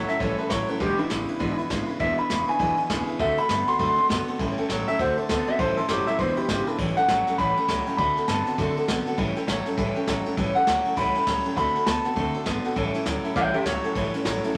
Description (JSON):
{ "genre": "rockabilly", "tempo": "201 BPM", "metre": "4/4", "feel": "swing 60% on 8ths", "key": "A mixolydian", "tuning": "A4 = 442 Hz", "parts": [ { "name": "electric guitar through a small old amp", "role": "melody", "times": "0.0-14.5 s", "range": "E4 to C6", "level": "-27 LUFS", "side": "equal", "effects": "spring reverb" }, { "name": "picked steel-string acoustic guitar", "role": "accompaniment", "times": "0.0-14.6 s", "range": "A2 to B4", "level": "-31 LUFS", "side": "equal", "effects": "none" }, { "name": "twangy electric guitar", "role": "riff", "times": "0.0-14.6 s", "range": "E2 to B3", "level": "-33 LUFS", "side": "equal", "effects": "none" }, { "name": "upright bass", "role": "bass", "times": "0.0-14.5 s", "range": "E1 to G2", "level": "-37 LUFS", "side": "equal", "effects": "none" }, { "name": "jazz brush drum kit", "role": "drums", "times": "0.1-14.6 s", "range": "crash cymbal, kick drum, ride cymbal, snare drum", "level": "-34 LUFS", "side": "equal", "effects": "none" } ], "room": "moderate studio reverb, RT60 0.8 s", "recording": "none", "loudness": "-24 LUFS", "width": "mono", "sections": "0.0-6.8 A section; 6.8-14.6 B section", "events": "clean electric guitar solo 6.8-14.6", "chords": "0.0 A7; 0.8 E7; 3.2 D7; 4.4 A7; 5.0 D7; 5.6 A7; 6.2 E7; 6.8 A7; 8.0 D7; 9.2 A7; 11.6 D7; 12.8 A7" }